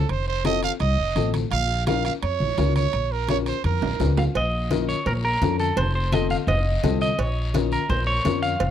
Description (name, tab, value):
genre	latin, cumbia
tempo	169 BPM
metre	4/4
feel	straight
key	Bb harmonic minor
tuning	A4 = 443 Hz
part	growling trumpet	second line	0.0-4.1 s	A4 to F5	-26 LUFS	right 10 dB	none
part	upright bass	bass	0.0-8.7 s	F1 to F2	-24 LUFS	equal	none
part	congas	percussion	0.1-8.7 s	none	-30 LUFS	equal	none
part	guiro	percussion	0.1-8.7 s	none	-40 LUFS	left 7 dB	none
part	timbales and cowbell	percussion	0.1-8.7 s	none	-31 LUFS	right 9 dB	none
part	dark upright piano	accompaniment	0.4-8.5 s	C4 to Bb4	-27 LUFS	left 14 dB	none
part	clean electric guitar	melody	4.2-8.7 s	A4 to F5	-25 LUFS	equal	spring reverb
room	light reverb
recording	dry, close 1970s-style studio recording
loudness	-20 LUFS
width	side -10 dB against mid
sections	0.0-4.4 A section; 4.4-8.7 B section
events	trumpet solo 0.0-4.4; drum fill 3.6-4.4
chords	0.1 F7; 1.5 Bbm; 5.8 F7; 7.2 Bbm